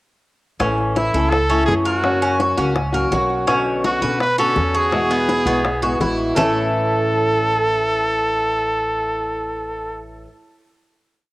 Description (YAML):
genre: latin, Cuban son and guajira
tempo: 166 BPM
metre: 4/4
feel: straight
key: A major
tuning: A4 = 441 Hz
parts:
  - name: flamenco guitar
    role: accompaniment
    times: 0.6-10.3 s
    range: A2 to F#4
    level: -23 LUFS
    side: left 1 dB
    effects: cassette tape
  - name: Cuban tres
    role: arpeggios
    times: 0.6-10.2 s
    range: A3 to B4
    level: -22 LUFS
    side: right 1 dB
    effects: cassette tape
  - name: upright bass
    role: bass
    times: 0.6-10.2 s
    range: A1 to B2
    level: -26 LUFS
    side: equal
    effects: none
  - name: bongos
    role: percussion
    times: 0.6-6.5 s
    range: none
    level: -26 LUFS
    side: left 3 dB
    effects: none
  - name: brilliant trumpet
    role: melody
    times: 1.0-10.0 s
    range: E4 to B4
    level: -20 LUFS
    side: equal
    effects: cassette tape
room: wet spring reverb, RT60 1.6 s, studio ambience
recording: home recording on cassette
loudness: -16 LUFS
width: side -18 dB against mid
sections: 0.6-6.4 verse; 6.4-9.3 final chord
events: none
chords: 0.6 A; 2.0 F#; 3.5 Bmadd9; 4.9 Eadd9; 6.4 A